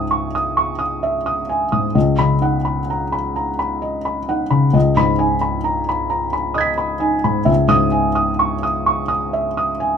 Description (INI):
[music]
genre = neoclassical minimalist piano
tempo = 43 BPM (dotted quarters)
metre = 6/8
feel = rubato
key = C# dorian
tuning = A4 = 440 Hz
[part]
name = felt-muted upright piano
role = solo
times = 0.0-10.0 s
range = C#2 to B6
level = -16 LUFS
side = left 1 dB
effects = none
[sound]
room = light reverb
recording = minimal, uncompressed stereo recording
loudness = -16 LUFS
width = side -7 dB against mid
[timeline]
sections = 0.0-10.0 A section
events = none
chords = 0.0 C#madd9; 2.0 Badd9/C#; 4.7 G#m/C#; 7.5 C#madd9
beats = 0.56 | 1.95 3.35 | 4.75 6.12 | 7.49 8.88